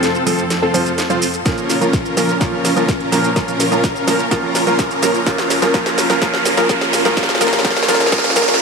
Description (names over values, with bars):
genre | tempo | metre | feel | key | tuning
EDM, festival progressive house | 126 BPM | 4/4 | straight | Bb harmonic minor | A4 = 440 Hz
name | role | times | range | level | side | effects
dark symphonic string section | sustained chords | 0.0-8.6 s | F2 to Bb4 | -24 LUFS | left 3 dB | vintage 12-bit sampler grit, sidechain pumping
wide unison pluck | arpeggios | 0.0-8.6 s | A4 to C5 | -22 LUFS | left 1 dB | sidechain pumping, digital delay
dense compressed supersaw | riff | 0.0-8.6 s | C4 to C5 | -20 LUFS | equal | sidechain pumping, low-pass filter, digital delay
house drum kit | drums | 0.0-8.6 s | hi-hat, shaker, snare drum | -20 LUFS | equal | high-pass filter on hats, high-pass filter on perc, high-pass filter on snare, high-pass filter on room
felt-muted upright piano | accompaniment | 0.3-8.6 s | F3 to Bb4 | -21 LUFS | right 4 dB | sidechain pumping, digital delay
electronic kick drum | drums | 1.5-8.2 s | none | -20 LUFS | left 1 dB | none
riser | sound effects | 3.0-8.6 s | none | -22 LUFS | right 2 dB | none
room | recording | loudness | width
moderate huge ambient reverb, RT60 7.7 s | high-pass filter | -13 LUFS | side -4 dB against mid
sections
0.0-8.6 A section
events
build-up 0.0-8.6; drum fill 0.0-8.6; filter sweep on synth pluck 0.0-8.6; riser 3.0-8.6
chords
0.0 F; 1.5 Bbm; 5.3 Gb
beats
0.03 0.50 0.98 | 1.46 1.93 2.41 2.88 | 3.36 3.84 4.31 4.79 | 5.27 5.74 6.22 6.70 | 7.17 7.65 8.12 8.60